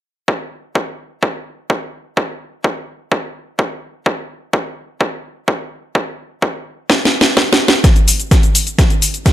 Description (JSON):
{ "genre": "EDM", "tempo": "127 BPM", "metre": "4/4", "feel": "straight", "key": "none", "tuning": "none", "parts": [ { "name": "electronic kick drum", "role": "drums", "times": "0.3-9.3 s", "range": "none", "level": "-14 LUFS", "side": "equal", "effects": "overdrive, high-pass filter on kick, high-pass filter on room" }, { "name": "house drum kit", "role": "drums", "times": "6.9-9.3 s", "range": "hi-hat, shaker, snare drum", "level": "-13 LUFS", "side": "equal", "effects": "low-pass filter on snare, low-pass filter on hats, low-pass filter on perc, low-pass filter on room" } ], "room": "light reverb", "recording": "none", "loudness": "-14 LUFS", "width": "side -12 dB against mid", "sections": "0.3-7.8 A section; 7.8-9.3 B section", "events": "drum fill 6.9-7.8, 7.8-9.3; build-up 7.8-9.3", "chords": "none" }